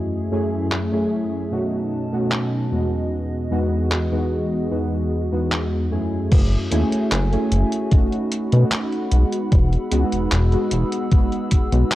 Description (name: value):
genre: vaporwave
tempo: 75 BPM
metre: 4/4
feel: straight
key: E major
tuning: A4 = 440 Hz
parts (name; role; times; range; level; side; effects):
- warbly lo-fi synth keys; accompaniment; 0.0-11.9 s; E2 to G#4; -22 LUFS; equal; analog chorus, tape echo
- warbly tape-like pad; sustained chords; 0.0-11.9 s; E2 to E6; -29 LUFS; left 1 dB; chorus, built-in reverb
- detuned 8-bit digital drum machine; drums; 0.7-11.9 s; crash cymbal, handclaps, hi-hat; -26 LUFS; equal; low-pass filter on snare, low-pass filter on hats, low-pass filter on cymbals, low-pass filter on room
- chorused synth bass; bass; 6.3-11.8 s; E1 to B2; -17 LUFS; equal; tube saturation
- electronic kick drum; drums; 6.3-11.7 s; none; -16 LUFS; equal; none
room: light reverb, digital ambience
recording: dry, gritty hardware recording, cassette tape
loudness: -18 LUFS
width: side -15 dB against mid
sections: 0.0-6.3 A section; 6.3-11.9 B section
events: none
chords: 0.0 F#m9; 1.5 Emaj7; 6.3 F#m9; 7.9 B7; 9.5 Emaj7